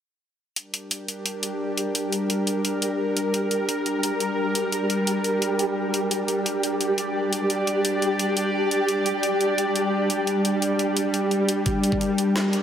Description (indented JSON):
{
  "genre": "half-time drum and bass",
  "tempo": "173 BPM",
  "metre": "4/4",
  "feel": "half-time",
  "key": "G minor",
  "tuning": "A4 = 442 Hz",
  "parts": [
    { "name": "bowed-like drone", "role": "sustained chords", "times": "0.8-12.6 s", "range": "G3 to D5", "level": "-23 LUFS", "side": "equal", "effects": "built-in reverb, sidechain pumping" },
    { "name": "drum and bass drum kit", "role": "drums", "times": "0.6-12.6 s", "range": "hi-hat, snare drum", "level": "-27 LUFS", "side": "equal", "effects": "overdrive" },
    { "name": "flickering grainy texture", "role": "texture", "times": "1.5-12.6 s", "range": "G4", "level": "-29 LUFS", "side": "equal", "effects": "built-in reverb, wide subtle chorus" },
    { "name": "electronic kick drum", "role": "drums", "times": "11.7-12.0 s", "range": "none", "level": "-27 LUFS", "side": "equal", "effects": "overdrive" }
  ],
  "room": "wet huge ambient reverb, RT60 7.7 s",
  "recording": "dreamy mix soaked in reverb",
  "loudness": "-22 LUFS",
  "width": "side -9 dB against mid",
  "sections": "0.6-12.6 A section",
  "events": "none",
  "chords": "0.6 Gm"
}